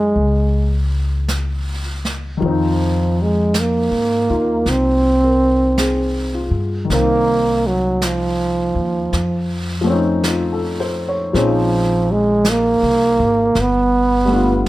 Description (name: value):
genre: jazz ballad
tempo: 54 BPM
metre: 4/4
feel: swing 66% on 8ths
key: unclear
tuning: A4 = 439 Hz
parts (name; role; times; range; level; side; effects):
- breathy trombone; melody; 0.0-14.7 s; F3 to C4; -16 LUFS; right 2 dB; none
- warm baby grand piano; accompaniment; 0.0-14.7 s; Eb3 to Db5; -22 LUFS; left 2 dB; none
- upright bass; bass; 0.0-14.6 s; G1 to Ab2; -20 LUFS; left 1 dB; none
- jazz brush drum kit; drums; 0.2-14.7 s; brushed snare drum, hi-hat, snare drum; -27 LUFS; right 1 dB; none
room: light reverb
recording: none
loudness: -15 LUFS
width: side -17 dB against mid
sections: 0.0-14.7 A section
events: none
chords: 0.0 Gb13 (rootless); 2.4 Fm7; 6.9 Ebsus2/C; 9.1 F7b13; 11.3 Bbm11; 13.6 G7